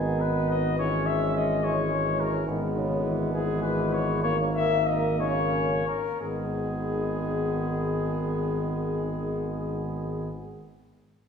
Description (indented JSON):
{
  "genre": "classical, brass quintet",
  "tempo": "57-72 BPM (dotted quarters)",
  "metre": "6/8",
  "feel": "rubato",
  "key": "G# minor",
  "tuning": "A4 = 440 Hz",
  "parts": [
    { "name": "warm trumpet", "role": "melody", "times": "0.0-10.3 s", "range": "G#4 to E5", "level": "-30 LUFS", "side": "left 4 dB", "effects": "none" },
    { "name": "clear flugelhorn", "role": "second line", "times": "0.0-10.3 s", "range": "A#3 to D#4", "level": "-34 LUFS", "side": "right 4 dB", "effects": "none" },
    { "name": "bright trombone", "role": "accompaniment", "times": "0.0-10.3 s", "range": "C#3 to E3", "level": "-34 LUFS", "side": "right 1 dB", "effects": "none" },
    { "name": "warm French horn", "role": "accompaniment", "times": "0.0-10.3 s", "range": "G#3 to B3", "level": "-31 LUFS", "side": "left 2 dB", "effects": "none" },
    { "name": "mellow tuba", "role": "bass", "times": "0.0-10.3 s", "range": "G#1", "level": "-31 LUFS", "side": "right 1 dB", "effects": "none" }
  ],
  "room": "wet recital hall reverb, RT60 1.6 s",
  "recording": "recorded in a church or concert hall",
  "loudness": "-25 LUFS",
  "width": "side -6 dB against mid",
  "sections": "0.0-6.2 A section; 6.2-10.1 B section",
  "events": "slowing down 1.6-6.2",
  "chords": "0.0 G#m; 0.8 C#m/G#; 4.2 D#5/G#; 6.2 G#m"
}